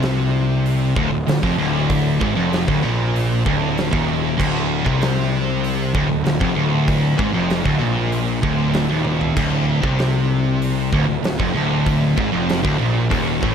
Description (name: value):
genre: stoner and doom metal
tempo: 96 BPM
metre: 4/4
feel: straight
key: D minor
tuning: A4 = 440 Hz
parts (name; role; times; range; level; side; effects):
- distorted electric guitar; riff; 0.0-13.5 s; D2 to C3; -24 LUFS; right 2 dB; distortion
- thick fuzz guitar; riff; 0.0-13.5 s; D2 to C3; -21 LUFS; left 7 dB; distortion
- thick fuzz guitar; riff; 0.0-13.5 s; D2 to C3; -23 LUFS; right 10 dB; distortion
- fuzz picked electric bass; bass; 0.0-13.5 s; D1 to C2; -25 LUFS; equal; overdrive
- big rock drum kit; drums; 0.0-13.5 s; crash cymbal, hi-hat, kick drum, snare drum, toms; -24 LUFS; right 1 dB; none
room: light reverb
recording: none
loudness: -16 LUFS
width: side -7 dB against mid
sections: 0.0-13.5 A section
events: drum fill 9.1-9.4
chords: 0.0 Dm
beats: 0.02 0.65 1.27 | 1.90 2.52 3.15 3.77 | 4.39 5.01 5.63 6.26 | 6.88 7.50 8.12 8.74 | 9.37 9.99 10.61 11.24 | 11.86 12.48 13.11